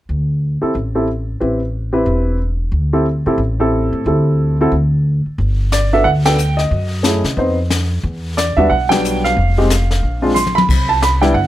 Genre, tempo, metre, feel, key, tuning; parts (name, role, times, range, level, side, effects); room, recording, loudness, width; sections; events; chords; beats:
jazz piano trio; 181 BPM; 4/4; swing 62% on 8ths; A4 = 441 Hz
upright bass; bass; 0.1-11.5 s; E1 to C3; -17 LUFS; equal
warm baby grand piano; melody; 0.6-11.5 s; F#3 to C6; -16 LUFS; right 1 dB
jazz brush drum kit; drums; 5.4-11.5 s; brushed snare drum, crash cymbal, hi-hat, kick drum, ride cymbal, snare drum, toms; -20 LUFS; left 2 dB
little or no reverb; close, detailed microphones; -13 LUFS; side -14 dB against mid
0.1-5.4 A section; 5.4-11.5 B section
band accent 6.2, 8.9; drum fill 10.4-10.7
0.1 D5; 1.4 Am7; 2.7 D7sus4; 4.7 N.C.; 5.4 Gmaj7(no3); 6.7 F#m9; 7.4 F5; 8.0 Em9; 9.4 N.C.; 10.0 Bbsus2; 10.7 Cmaj7(no3)
| 0.09 0.42 0.75 1.08 | 1.41 1.74 2.08 2.41 | 2.74 3.07 3.40 3.73 | 4.06 4.40 4.73 5.06 | 5.39 5.72 6.05 6.39 | 6.72 7.05 7.38 7.71 | 8.04 8.37 8.70 9.03 | 9.36 9.69 10.02 10.35 | 10.68 11.01 11.34